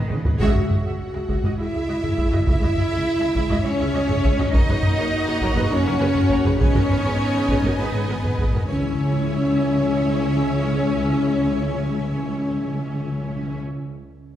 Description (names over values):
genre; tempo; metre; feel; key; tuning
cinematic, epic orchestral film score; 202 BPM (eighths); 7/8; straight; C# dorian; A4 = 444 Hz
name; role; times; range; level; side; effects
rich symphonic violin section; melody; 0.0-13.6 s; B4 to F#5; -35 LUFS; left 2 dB; none
warm symphonic violin section; second line; 0.0-13.6 s; B4 to F#5; -33 LUFS; left 1 dB; none
clear symphonic string section; sustained chords; 0.0-13.6 s; G#3 to G#5; -31 LUFS; equal; none
mellow French horn section; sustained chords; 0.0-13.6 s; B3 to F#4; -25 LUFS; left 2 dB; none
rich symphonic cello section; bass; 0.0-13.6 s; C#3 to F#4; -29 LUFS; right 2 dB; none
timpani; percussion; 0.0-1.3, 6.6-13.6 s; G#2 to C#3; -28 LUFS; left 1 dB; none
warm symphonic viola section; accompaniment; 0.1-13.6 s; F#4 to E5; -32 LUFS; right 2 dB; none
rich symphonic double bass section; bass; 0.1-13.6 s; F#1 to C#2; -26 LUFS; right 2 dB; none
taiko ensemble; drums; 0.1-8.9 s; none; -22 LUFS; equal; none
room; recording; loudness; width
wet scoring stage reverb, RT60 1.5 s; heard from further back in the room; -19 LUFS; side -11 dB against mid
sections
0.4-8.7 A section; 8.7-12.8 B section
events
timpani fill 0.0-0.4, 6.6-8.7; drum fill 0.0-0.4; band accent 0.4-1.0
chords
0.4 C#m; 4.5 F#; 6.6 G#m; 8.7 C#m